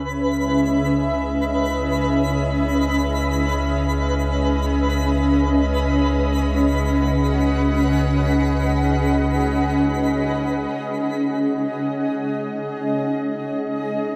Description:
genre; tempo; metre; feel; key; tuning
ambient; free time; none; none; C# minor; A4 = 445 Hz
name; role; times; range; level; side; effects
granular cloud pad; sustained chords; 0.0-14.2 s; C#4 to F#5; -23 LUFS; equal; built-in reverb, shimmer reverb
warm sub bass; bass; 0.0-10.7 s; C#2; -26 LUFS; equal; none
analog drone; drone; 0.0-10.8 s; C#3; -30 LUFS; equal; chorus
twinkling granular texture; texture; 0.0-10.7 s; B4 to B5; -30 LUFS; equal; built-in reverb, shimmer reverb
room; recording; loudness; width
wet cathedral reverb, RT60 5.5 s; in a vast, echoing space; -21 LUFS; mono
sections
0.0-10.7 A section; 10.7-14.2 B section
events
fade-in on sub bass 0.0-10.7; fade-in on synth drone 0.0-10.7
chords
0.0 C#m11; 10.7 C#sus2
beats
free time

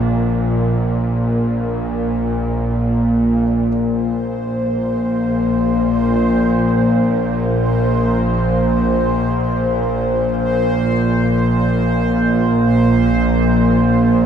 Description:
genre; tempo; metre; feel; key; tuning
dark ambient drone; free time; none; none; unclear; A4 = 439 Hz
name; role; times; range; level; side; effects
bright concert grand piano; arpeggios; 0.0-3.7 s; D4; -41 LUFS; right 3 dB; none
bowed-like drone; drone; 0.0-14.3 s; Bb1 to Bb2; -15 LUFS; equal; built-in reverb
bubbling stepped-filter texture; texture; 4.0-14.3 s; C5; -22 LUFS; right 1 dB; chorus, built-in reverb
room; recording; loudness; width
wet cathedral reverb, RT60 5.1 s; dreamy mix soaked in reverb; -14 LUFS; side -8 dB against mid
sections
0.0-3.7 A section; 3.7-14.3 B section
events
none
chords
0.0 Bb; 3.7 Bbsus2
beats
free time

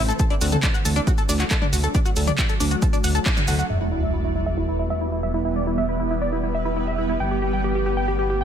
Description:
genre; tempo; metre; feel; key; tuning
uplifting trance; 137 BPM; 4/4; straight; E minor; A4 = 436 Hz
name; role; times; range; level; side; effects
shimmering ambient pad; sustained chords; 0.0-8.4 s; E3 to D4; -28 LUFS; equal; chorus, built-in reverb, phaser, sidechain pumping
tight sequenced synth; arpeggios; 0.0-3.7 s; D4 to F#5; -27 LUFS; left 2 dB; chorus, sidechain pumping, digital delay
fat analog bass; bass; 0.0-8.4 s; E1 to D2; -25 LUFS; equal; tube saturation, sidechain pumping
punchy analog drum machine; drums; 0.1-3.7 s; handclaps, hi-hat, toms; -26 LUFS; left 1 dB; none
maracas; percussion; 0.1-3.7 s; none; -33 LUFS; right 5 dB; none
electronic kick drum; drums; 0.2-3.3 s; none; -22 LUFS; equal; none
supersaw stab; melody; 3.7-8.4 s; E4 to G5; -25 LUFS; right 1 dB; cassette tape, sidechain pumping, low-pass filter, digital delay
sub drop; sound effects; 3.7-5.5 s; none; -29 LUFS; equal; none
room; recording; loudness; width
light reverb, digital ambience; none; -20 LUFS; side -8 dB against mid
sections
0.0-3.7 A section; 3.7-8.4 B section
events
band accent 3.3; impact 3.7-5.5; filter sweep on supersaw synth 3.7-8.4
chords
0.2 D; 3.7 Em; 7.2 Gadd9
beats
| 0.20 0.63 1.07 1.51 | 1.95 2.38 2.82 3.26 | 3.70 4.14 4.57 5.01 | 5.45 5.89 6.33 6.76 | 7.20 7.64 8.08

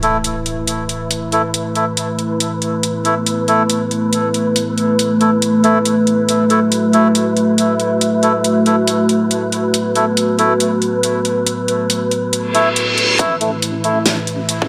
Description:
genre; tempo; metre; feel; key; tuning
deep dubstep; 139 BPM; 4/4; swing 61% on 16ths, half-time; unclear; A4 = 440 Hz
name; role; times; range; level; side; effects
dark analog pad; sustained chords; 0.0-14.7 s; A3 to E5; -19 LUFS; equal; chorus
melodica; stabs; 0.0-14.0 s; A3 to A4; -22 LUFS; equal; low-pass filter, dub echo
dubstep drum kit; drums; 0.0-14.6 s; hi-hat, snare drum; -21 LUFS; equal; high-pass filter on hats, studio reverb, high-pass filter on snare
impact, reverse cymbal and riser; sound effects; 0.0-1.1, 12.5-14.7 s; none; -23 LUFS; equal; none
wind-like tuned noise texture; texture; 0.3-14.7 s; B4; -24 LUFS; equal; built-in reverb
deep soft wobble bass; bass; 13.2-14.7 s; A1; -31 LUFS; equal; chorus, high-pass filter
electronic kick drum; drums; 13.2-14.7 s; none; -22 LUFS; equal; high-pass filter on kick, studio reverb
room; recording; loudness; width
moderate huge ambient reverb, RT60 4.9 s; dark, warm production; -16 LUFS; mono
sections
0.0-13.2 A section; 13.2-14.7 B section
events
impact 0.0-1.1; reverse cymbal 12.5-13.2; build-up 13.2-14.7; riser 13.2-14.7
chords
0.0 A5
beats
0.24 0.68 | 1.11 1.54 1.97 2.40 | 2.83 3.27 3.70 4.13 | 4.56 4.99 5.42 5.85 | 6.29 6.72 7.15 7.58 | 8.01 8.44 8.88 9.31 | 9.74 10.17 10.60 11.03 | 11.47 11.90 12.33 12.76 | 13.19 13.62 14.06 14.49

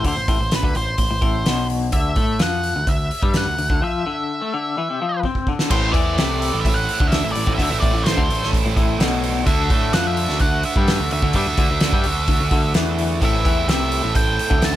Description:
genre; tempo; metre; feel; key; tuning
indie rock; 128 BPM; 4/4; straight; A dorian; A4 = 440 Hz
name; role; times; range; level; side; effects
octave-fuzz lead guitar; melody; 0.0-14.8 s; B4 to A5; -25 LUFS; equal; distortion, digital delay
electric guitar through a small old amp; riff; 0.0-14.7 s; A2 to C4; -25 LUFS; left 5 dB; tremolo
growling picked electric bass; bass; 0.0-14.7 s; A1 to A2; -24 LUFS; equal; overdrive
loose indie drum kit; drums; 0.0-14.7 s; crash cymbal, hi-hat, kick drum, snare drum; -20 LUFS; equal; none
percussive tonewheel organ; sustained chords; 5.7-14.8 s; D3 to F#5; -34 LUFS; right 2 dB; none
distorted electric guitar; riff; 5.7-14.8 s; A2 to F#4; -25 LUFS; right 6 dB; overdrive, lush chorus, digital delay
room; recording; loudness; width
little or no reverb; none; -17 LUFS; side -13 dB against mid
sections
0.0-5.7 A section; 5.7-14.8 B section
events
break 3.8-5.7; drum fill 5.2-5.7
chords
0.0 Am; 1.9 Dadd9; 5.7 Am; 9.5 Dadd9; 13.2 Am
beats
| 0.05 0.52 0.99 1.46 | 1.93 2.40 2.88 3.35 | 3.82 4.29 4.76 5.23 | 5.71 6.18 6.65 7.12 | 7.59 8.06 8.53 9.00 | 9.47 9.94 10.41 10.88 | 11.35 11.81 12.28 12.75 | 13.22 13.69 14.16 14.63

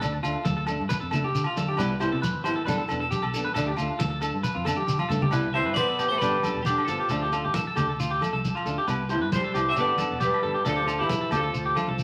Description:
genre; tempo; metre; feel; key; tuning
highlife guitar band; 135 BPM; 4/4; swing 54% on 16ths; unclear; A4 = 440 Hz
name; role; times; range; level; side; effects
flamenco guitar; accompaniment; 0.0-11.9 s; F3 to A4; -34 LUFS; equal; none
electric guitar at the edge of break-up; arpeggios; 0.0-12.0 s; F4 to C5; -31 LUFS; equal; spring reverb
fingered electric bass; bass; 0.0-12.0 s; E1 to D3; -35 LUFS; equal; none
agogo bells; percussion; 0.0-11.9 s; none; -38 LUFS; equal; none
congas; percussion; 0.0-12.0 s; none; -34 LUFS; equal; none
shekere; percussion; 0.0-12.0 s; none; -38 LUFS; equal; none
clean electric guitar; melody; 5.5-12.0 s; D4 to E5; -30 LUFS; equal; none
brilliant trombone; second line; 5.6-12.0 s; D3 to C4; -38 LUFS; equal; none
room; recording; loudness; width
wet studio reverb, RT60 0.9 s; vinyl crackle; -26 LUFS; mono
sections
0.0-5.3 A section; 5.3-12.0 B section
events
drum fill 4.8-5.3, 11.9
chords
0.0 Dm; 1.8 Cmaj7; 2.7 Gadd9; 3.6 Dm; 5.3 Cmaj7; 6.2 Gadd9; 7.1 Dm; 8.9 Cmaj7; 9.8 Gadd9; 10.7 Dm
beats
| 0.02 0.46 0.90 1.34 | 1.79 2.23 2.67 3.11 | 3.56 4.00 4.44 4.88 | 5.33 5.77 6.21 6.66 | 7.10 7.55 7.99 8.44 | 8.88 9.32 9.77 10.21 | 10.65 11.10 11.54 11.99

